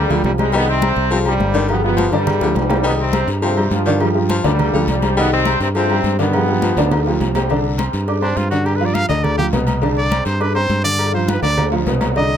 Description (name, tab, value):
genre	latin, salsa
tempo	206 BPM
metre	4/4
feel	straight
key	C harmonic minor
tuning	A4 = 440 Hz
part	brilliant trombone section	melody	0.0-7.0 s	G2 to F4	-20 LUFS	equal	none
part	warm upright piano	accompaniment	0.0-12.4 s	B2 to D6	-21 LUFS	equal	none
part	fingered electric bass	bass	0.0-12.4 s	G1 to G2	-20 LUFS	equal	none
part	warm baritone saxophone	second line	0.1-7.3 s	D3 to G3	-23 LUFS	left 4 dB	none
part	congas	percussion	0.1-12.4 s	none	-24 LUFS	left 2 dB	none
part	cowbell and bongos	percussion	0.2-12.3 s	none	-27 LUFS	left 4 dB	none
part	timbales and agogo bells	percussion	0.2-12.3 s	none	-25 LUFS	equal	none
part	guiro	percussion	2.8-12.4 s	none	-35 LUFS	left 5 dB	none
part	bright trumpet	melody	8.2-12.4 s	D4 to F5	-20 LUFS	right 1 dB	none
room	little or no reverb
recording	close, detailed microphones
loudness	-14 LUFS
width	side -9 dB against mid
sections	0.0-7.5 A section; 7.5-12.4 B section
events	drum fill 2.3-2.9, 6.8-7.5, 11.3-12.2; trumpet solo 7.5-12.4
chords	0.0 G5; 0.5 G7; 2.9 Cmadd9; 4.0 G5; 5.2 Cmadd9; 7.5 Csus2; 8.7 G7; 9.8 Csus2; 11.0 G7